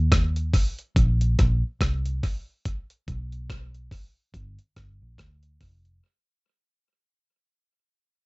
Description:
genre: roots reggae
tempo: 71 BPM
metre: 4/4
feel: swing 58% on 16ths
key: unclear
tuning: A4 = 442 Hz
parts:
  - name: vintage muted fingered electric bass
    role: bass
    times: 0.0-6.0 s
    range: F1 to Eb2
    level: -24 LUFS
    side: equal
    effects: none
  - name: dusty soul sampler-style drum kit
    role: drums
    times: 0.1-6.0 s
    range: hi-hat, kick drum, rim click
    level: -23 LUFS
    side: equal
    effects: overdrive
room: little or no reverb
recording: nothing above 7.9 kHz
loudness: -22 LUFS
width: side -28 dB against mid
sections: 0.0-6.0 A section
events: fade-out 0.0-6.0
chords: none

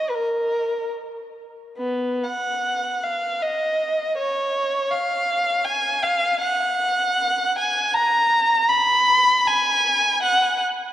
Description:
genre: classical, free, expressive piece for unaccompanied violin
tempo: 78 BPM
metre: 3/4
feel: rubato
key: F# major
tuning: A4 = 440 Hz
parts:
  - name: rich violin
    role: solo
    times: 0.0-10.6 s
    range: B3 to B5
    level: -19 LUFS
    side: equal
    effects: none
room: wet church reverb, RT60 3.5 s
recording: worn, warbling old tape, cassette tape, warbly pitch drift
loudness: -18 LUFS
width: side -12 dB against mid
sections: 0.0-10.9 A section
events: none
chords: none

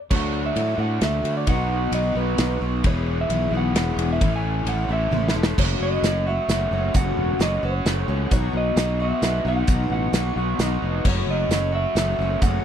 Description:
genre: folk rock and heartland rock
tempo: 132 BPM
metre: 3/4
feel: straight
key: unclear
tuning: A4 = 438 Hz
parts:
  - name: electric guitar through a small old amp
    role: melody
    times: 0.1-12.6 s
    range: B4 to G#5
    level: -27 LUFS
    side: right 2 dB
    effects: none
  - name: picked twelve-string acoustic guitar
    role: accompaniment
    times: 0.1-12.6 s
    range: F#2 to A4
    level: -28 LUFS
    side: left 6 dB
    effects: none
  - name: raw garage guitar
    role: riff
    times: 0.1-12.6 s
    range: E2 to F#4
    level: -28 LUFS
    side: right 2 dB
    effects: overdrive
  - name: fingered electric bass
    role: bass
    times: 0.1-12.6 s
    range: E1 to A2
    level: -24 LUFS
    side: equal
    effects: none
  - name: loose indie drum kit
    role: drums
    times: 0.1-12.5 s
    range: crash cymbal, hi-hat, kick drum, ride cymbal, snare drum, toms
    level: -24 LUFS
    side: equal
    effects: none
room: little or no reverb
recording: none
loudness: -20 LUFS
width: side -9 dB against mid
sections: 0.1-5.6 A section; 5.6-12.6 B section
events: drum fill 5.1-5.6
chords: 0.1 Dmaj7; 1.5 B; 2.9 E; 4.2 A; 5.6 F#m; 8.3 B; 11.1 F#m

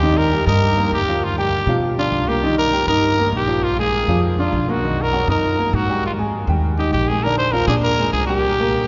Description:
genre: latin, salsa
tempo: 200 BPM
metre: 4/4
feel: straight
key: Eb major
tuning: A4 = 440 Hz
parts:
  - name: growling trumpet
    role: melody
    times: 0.0-8.9 s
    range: F4 to C5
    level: -22 LUFS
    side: equal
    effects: none
  - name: warm baby grand piano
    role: accompaniment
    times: 0.0-8.8 s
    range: D3 to Eb6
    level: -24 LUFS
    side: equal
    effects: none
  - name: upright bass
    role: bass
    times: 0.0-8.8 s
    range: Bb1 to B2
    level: -23 LUFS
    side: equal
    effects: none
room: wet cathedral reverb, RT60 6.5 s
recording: recorded in a church or concert hall, nothing above 7.5 kHz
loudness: -18 LUFS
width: mono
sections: 0.0-8.9 A section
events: none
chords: 0.0 Ebmaj7; 1.2 G7/D; 2.4 Cm7; 3.6 Bb7; 4.8 Bmaj7; 6.0 Absus2; 7.2 Bb7

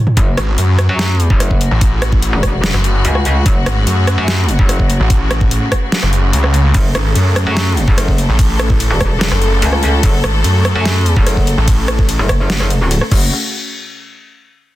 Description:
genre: heavy wobble dubstep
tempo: 146 BPM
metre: 4/4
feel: half-time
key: F# minor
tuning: A4 = 441 Hz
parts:
  - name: dubstep drum kit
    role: drums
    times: 0.1-13.2 s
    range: crash cymbal, hi-hat, ride cymbal, rim click, snare drum, toms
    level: -19 LUFS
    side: equal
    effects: overdrive
  - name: clear symphonic string section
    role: sustained chords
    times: 0.2-13.3 s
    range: C#3 to A4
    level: -21 LUFS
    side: left 2 dB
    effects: sidechain pumping
  - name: metallic wobble bass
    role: bass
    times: 0.2-13.3 s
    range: E1 to F#2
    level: -15 LUFS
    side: equal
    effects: distortion, chorus, overdrive
  - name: electronic kick drum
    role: drums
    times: 0.2-13.2 s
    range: none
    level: -14 LUFS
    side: equal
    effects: overdrive
  - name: snarling distorted saw bass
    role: bass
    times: 0.4-12.2 s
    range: F#1 to F#2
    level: -14 LUFS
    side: equal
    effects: distortion, overdrive
room: little or no reverb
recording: dense, heavily limited modern master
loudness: -11 LUFS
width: side -15 dB against mid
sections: 0.0-13.3 A section; 13.3-14.8 B section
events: break 0.0; drop 0.0-13.3; drum fill 0.0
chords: 0.0 F#m; 13.3 N.C.

